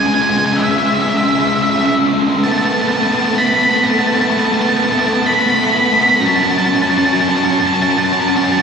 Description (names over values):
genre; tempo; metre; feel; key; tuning
rock; 64 BPM; 4/4; straight; A major; A4 = 441 Hz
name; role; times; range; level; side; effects
octave-fuzz lead guitar; melody; 0.0-8.6 s; E5 to B5; -15 LUFS; right 1 dB; distortion
fuzz guitar; riff; 0.0-8.6 s; C#3 to C#4; -15 LUFS; equal; distortion
room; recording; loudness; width
wet church reverb, RT60 3.6 s; recorded in a church or concert hall; -12 LUFS; side -6 dB against mid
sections
0.0-8.6 A section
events
build-up 0.0-8.6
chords
0.0 C#m; 2.4 Asus2; 6.2 F#m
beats
0.57 1.51 | 2.45 3.39 4.33 5.27 | 6.21 7.15 8.09